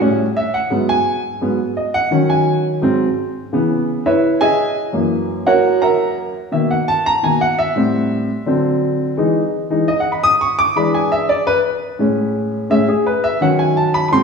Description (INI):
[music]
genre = jazz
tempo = 170 BPM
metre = 4/4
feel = straight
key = G# minor, C# minor from 3.5 s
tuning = A4 = 440 Hz
[part]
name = warm baby grand piano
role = solo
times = 0.0-14.2 s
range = F#2 to D#6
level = -14 LUFS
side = equal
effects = none
[sound]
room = wet scoring stage reverb, RT60 1.6 s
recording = recorded in a church or concert hall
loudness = -14 LUFS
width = side -5 dB against mid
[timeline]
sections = 0.0-3.5 A section; 3.5-14.2 A section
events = grand piano solo 0.0-14.2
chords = 0.0 A7; 0.7 G#m7; 2.1 D#m7; 2.8 G#7; 3.5 C#m9; 4.9 F#7; 6.4 Bmaj7; 7.8 Am7; 8.5 D7; 9.2 Emaj7; 10.6 E7; 12.0 Amaj7; 13.4 D#m7b5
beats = 0.01 0.36 | 0.71 1.06 1.42 1.77 | 2.12 2.47 2.82 3.18 | 3.53 3.88 4.23 4.59 | 4.94 5.29 5.64 6.00 | 6.35 6.70 7.06 7.41 | 7.76 8.12 8.47 8.82 | 9.17 9.53 9.88 10.23 | 10.59 10.94 11.29 11.65 | 12.00 12.35 12.71 13.06 | 13.41 13.77 14.12